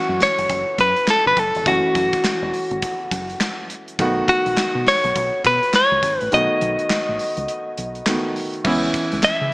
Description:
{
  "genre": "R&B, new jack swing",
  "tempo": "103 BPM",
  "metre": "4/4",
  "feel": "swing 61% on 16ths",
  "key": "unclear",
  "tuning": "A4 = 440 Hz",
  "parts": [
    { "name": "direct-recorded clean electric guitar", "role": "melody", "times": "0.0-9.5 s", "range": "F#4 to E5", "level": "-18 LUFS", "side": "left 1 dB", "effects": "vibrato effect" },
    { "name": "clear concert grand piano", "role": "accompaniment", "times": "0.0-9.5 s", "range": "D#3 to F#4", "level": "-25 LUFS", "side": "right 1 dB", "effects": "none" },
    { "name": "deep dub fingered electric bass", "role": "bass", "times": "0.1-9.5 s", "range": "E1 to C#3", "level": "-28 LUFS", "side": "equal", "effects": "none" },
    { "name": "gated 80s drum kit", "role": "drums", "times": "0.2-9.4 s", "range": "crash cymbal, handclaps, hi-hat, kick drum, snare drum", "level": "-25 LUFS", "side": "equal", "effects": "none" }
  ],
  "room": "light reverb, small room ambience",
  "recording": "small speaker sound",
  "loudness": "-17 LUFS",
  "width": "side -24 dB against mid",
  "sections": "0.0-8.6 A section",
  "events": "break 6.3-8.6",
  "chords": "0.0 F#m7; 4.0 B7; 8.6 C#m7",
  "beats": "0.49 1.08 | 1.66 2.24 2.82 3.41 | 3.99 4.57 5.15 5.74 | 6.32 6.90 7.48 8.07 | 8.65 9.23"
}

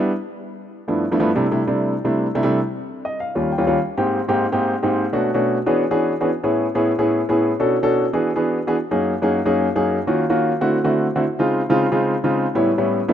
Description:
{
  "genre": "jazz",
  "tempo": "194 BPM",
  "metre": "4/4",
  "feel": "straight",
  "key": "unclear",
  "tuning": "A4 = 440 Hz",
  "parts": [
    { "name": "warm concert grand piano", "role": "solo", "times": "0.0-13.1 s", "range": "Eb2 to G5", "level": "-17 LUFS", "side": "equal", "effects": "none" }
  ],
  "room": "light reverb",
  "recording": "rough home demo mix",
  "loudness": "-17 LUFS",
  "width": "side -10 dB against mid",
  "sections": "0.0-3.8 A section; 3.8-13.1 B section",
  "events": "grand piano fill 2.9-3.8",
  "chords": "0.1 G13; 1.3 C69; 2.6 Eb7; 3.8 Abmaj7; 5.0 Bm9; 5.7 E13; 6.3 Amaj7; 7.5 Bm7; 8.1 E9; 8.8 Gb69; 10.0 Ebm9; 10.6 D9; 11.2 Dbmaj9; 12.5 A9",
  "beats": "| 0.09 0.40 0.71 1.02 | 1.33 1.64 1.95 2.26 | 2.57 2.88 3.19 3.50 | 3.81 4.12 4.43 4.74 | 5.05 5.36 5.67 5.97 | 6.28 6.59 6.90 7.21 | 7.52 7.83 8.13 8.44 | 8.75 9.06 9.37 9.68 | 9.99 10.29 10.60 10.91 | 11.22 11.53 11.84 12.15 | 12.46 12.77 13.08"
}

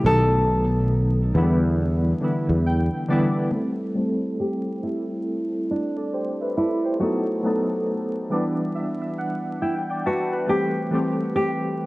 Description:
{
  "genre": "lo-fi hip hop",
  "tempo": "69 BPM",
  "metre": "4/4",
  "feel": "swing 62% on 16ths",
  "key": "A dorian",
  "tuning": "A4 = 441 Hz",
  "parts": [
    { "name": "nylon-string guitar", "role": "melody", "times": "0.0-11.9 s", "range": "D4 to A4", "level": "-25 LUFS", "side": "equal", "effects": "low-pass filter, analog delay" },
    { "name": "warbly lo-fi synth keys", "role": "accompaniment", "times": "0.0-11.9 s", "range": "B2 to A5", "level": "-24 LUFS", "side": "equal", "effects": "chorus, tremolo, cassette tape, low-pass filter" },
    { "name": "sustaining fretless electric bass", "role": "bass", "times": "0.0-2.9 s", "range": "B1 to E2", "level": "-20 LUFS", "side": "equal", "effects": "none" }
  ],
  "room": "moderate spring reverb, RT60 1.8 s",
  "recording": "dark, warm production, vinyl crackle, nothing above 10.4 kHz",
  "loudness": "-21 LUFS",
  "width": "side -20 dB against mid",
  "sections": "0.0-3.5 A section; 3.5-11.9 B section",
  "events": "filter sweep 3.5-11.9",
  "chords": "0.0 B7; 1.3 Em7; 3.5 Am7; 7.0 B7; 8.3 Em7; 10.5 Am7",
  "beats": "| 0.04 0.91 1.78 2.65 | 3.52 4.39 5.26 6.13 | 7.00 7.87 8.74 9.61 | 10.48 11.35"
}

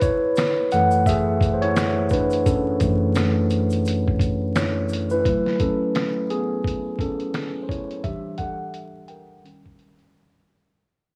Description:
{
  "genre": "lo-fi hip hop",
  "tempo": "86 BPM",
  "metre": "4/4",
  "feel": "swing 58% on 16ths",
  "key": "F# minor",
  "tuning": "A4 = 443 Hz",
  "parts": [
    { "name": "mellow tine electric piano", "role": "accompaniment", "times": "0.0-10.9 s", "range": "F#2 to G5", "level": "-23 LUFS", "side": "equal", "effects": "cassette tape, low-pass filter" },
    { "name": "lo-fi sampler-style drum kit", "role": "drums", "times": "0.0-10.1 s", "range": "finger snaps, hi-hat, kick drum, snare drum", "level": "-28 LUFS", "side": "equal", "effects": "none" },
    { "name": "tube shaker", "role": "percussion", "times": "0.0-5.2 s", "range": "none", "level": "-50 LUFS", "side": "equal", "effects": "none" }
  ],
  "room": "moderate plate reverb, RT60 2.2 s",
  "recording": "dreamy mix soaked in reverb, vinyl crackle, small room ambience",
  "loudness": "-22 LUFS",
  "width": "mono",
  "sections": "0.0-5.3 A section; 5.3-10.8 B section",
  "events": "tine electric piano solo 0.0-5.3, 5.3-10.8; fade-out 5.3-10.8; break 10.1-10.8",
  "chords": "0.0 F#m9; 8.0 Em9; 9.4 D#7",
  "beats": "0.37 1.06 1.76 | 2.46 3.16 3.86 4.55 | 5.25 5.95 6.65 7.34 | 8.04 8.74 9.44 10.13"
}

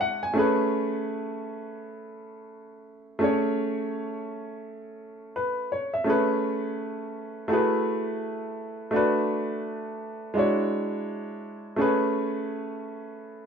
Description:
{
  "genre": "hip hop",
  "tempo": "84 BPM",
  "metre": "4/4",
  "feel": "swing 62% on 16ths",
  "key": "A major",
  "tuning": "A4 = 441 Hz",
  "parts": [
    { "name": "warm upright piano", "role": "solo", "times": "0.0-13.5 s", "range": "G#3 to G#5", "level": "-26 LUFS", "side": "equal", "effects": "none" }
  ],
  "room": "moderate studio reverb, RT60 0.7 s",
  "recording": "band playing live in one room",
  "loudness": "-25 LUFS",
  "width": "side -6 dB against mid",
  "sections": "0.0-6.1 A section; 6.1-13.5 B section",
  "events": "none",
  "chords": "0.4 Amaj9; 7.5 F#m11; 8.9 Bm7; 10.4 E13; 11.8 Amaj9",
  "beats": "| 0.36 1.08 1.79 2.51 | 3.22 3.93 4.65 5.36 | 6.08 6.79 7.51 8.22 | 8.93 9.65 10.36 11.08 | 11.79 12.51 13.22"
}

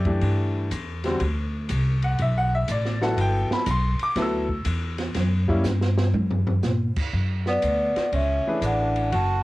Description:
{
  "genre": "modal jazz",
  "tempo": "121 BPM",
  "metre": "4/4",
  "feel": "swing 67% on 8ths",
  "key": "unclear",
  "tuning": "A4 = 440 Hz",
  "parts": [
    { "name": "bright upright piano", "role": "accompaniment", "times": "0.0-9.1 s", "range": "D3 to E6", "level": "-26 LUFS", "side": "left 1 dB", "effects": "cassette tape" },
    { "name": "upright bass", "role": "bass", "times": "0.0-9.4 s", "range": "F#1 to A#2", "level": "-24 LUFS", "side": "equal", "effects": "none" },
    { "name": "open jazz drum kit", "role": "drums", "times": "0.1-9.3 s", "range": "crash cymbal, hi-hat, kick drum, ride cymbal, snare drum, toms", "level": "-30 LUFS", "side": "equal", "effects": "cassette tape" },
    { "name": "vibraphone with medium mallets", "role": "melody", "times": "7.5-9.4 s", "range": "D5 to A5", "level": "-24 LUFS", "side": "equal", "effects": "cassette tape" },
    { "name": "breathy alto saxophone", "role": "second line", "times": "7.5-9.4 s", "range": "B3 to F#4", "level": "-28 LUFS", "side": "right 2 dB", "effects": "cassette tape" }
  ],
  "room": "light reverb",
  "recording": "home recording on cassette",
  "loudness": "-21 LUFS",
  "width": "side -18 dB against mid",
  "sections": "0.0-7.1 A section; 7.1-9.4 B section",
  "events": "drum fill 5.6-6.6",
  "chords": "0.0 D13sus4; 5.2 F#(b9); 7.1 Bm9",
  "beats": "0.21 0.71 | 1.20 1.69 2.19 2.68 | 3.17 3.67 4.16 4.66 | 5.15 5.65 6.14 6.64 | 7.13 7.63 8.13 8.63 | 9.12"
}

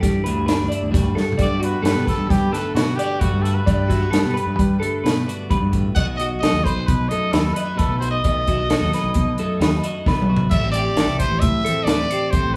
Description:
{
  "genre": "math rock and midwest emo",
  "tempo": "132 BPM",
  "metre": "5/4",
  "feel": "straight",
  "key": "unclear",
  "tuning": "A4 = 439 Hz",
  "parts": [
    { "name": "twelve-string electric guitar", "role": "accompaniment", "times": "0.0-12.6 s", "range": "F#2 to G4", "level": "-28 LUFS", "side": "equal", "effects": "none" },
    { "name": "twelve-string electric guitar", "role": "arpeggios", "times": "0.0-12.6 s", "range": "F#4 to E5", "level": "-29 LUFS", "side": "equal", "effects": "spring reverb" },
    { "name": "growling fingered electric bass", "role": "bass", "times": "0.0-12.6 s", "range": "A1 to G3", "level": "-26 LUFS", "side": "equal", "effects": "overdrive" },
    { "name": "compact cocktail drum kit", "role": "drums", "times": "0.0-12.4 s", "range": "crash cymbal, hi-hat, kick drum, snare drum, toms", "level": "-23 LUFS", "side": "equal", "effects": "none" },
    { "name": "growling trumpet", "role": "melody", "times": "1.4-12.6 s", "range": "F#4 to F#5", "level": "-27 LUFS", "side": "equal", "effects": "none" }
  ],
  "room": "light reverb",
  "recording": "band playing live in one room, small room ambience",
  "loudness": "-20 LUFS",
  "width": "mono",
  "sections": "0.0-1.4 A section; 1.4-12.6 B section",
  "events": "drum fill 1.2, 10.1-10.5",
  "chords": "0.0 Em9; 1.4 Gmaj9; 6.0 B7; 10.5 Am7",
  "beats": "0.02 0.47 0.93 | 1.39 1.84 2.30 2.76 3.22 | 3.67 4.13 4.59 5.05 5.50 | 5.96 6.42 6.88 7.33 7.79 | 8.24 8.70 9.16 9.61 10.07 | 10.52 10.98 11.43 11.89 12.34"
}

